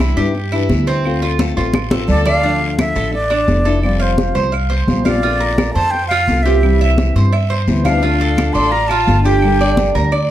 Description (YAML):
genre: latin, Cuban son and guajira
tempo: 172 BPM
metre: 4/4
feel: straight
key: unclear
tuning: A4 = 441 Hz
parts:
  - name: nylon-string guitar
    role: accompaniment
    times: 0.0-10.2 s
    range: C3 to G4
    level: -21 LUFS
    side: left 4 dB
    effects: none
  - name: Cuban tres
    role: arpeggios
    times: 0.0-10.3 s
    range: C4 to F5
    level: -20 LUFS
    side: right 5 dB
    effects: none
  - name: upright bass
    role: bass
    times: 0.0-10.3 s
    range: F1 to G2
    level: -17 LUFS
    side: equal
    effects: none
  - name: claves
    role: percussion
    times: 0.0-10.3 s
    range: none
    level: -31 LUFS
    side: right 5 dB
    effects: none
  - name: congas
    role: percussion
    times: 0.0-10.3 s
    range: none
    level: -20 LUFS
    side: left 1 dB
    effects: none
  - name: guiro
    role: percussion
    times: 0.0-10.3 s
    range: none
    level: -32 LUFS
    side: left 6 dB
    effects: none
  - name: breathy concert flute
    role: melody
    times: 2.1-9.9 s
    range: C5 to C6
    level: -18 LUFS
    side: equal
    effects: slapback echo, plate reverb
  - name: warm studio violin section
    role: second line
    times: 2.1-2.4, 7.9-9.9 s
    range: D4 to A4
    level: -23 LUFS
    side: left 1 dB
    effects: none
room: moderate large studio reverb, RT60 0.9 s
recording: dark, warm production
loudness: -13 LUFS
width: side -12 dB against mid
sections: 0.0-2.4 A section; 2.4-10.3 B section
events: drum fill 1.7-2.4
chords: 0.0 Cadd9; 1.0 Dm7; 2.4 Dmadd9; 3.8 Fsus2; 5.2 Bbadd9; 6.6 C; 8.0 Dm; 9.4 Gm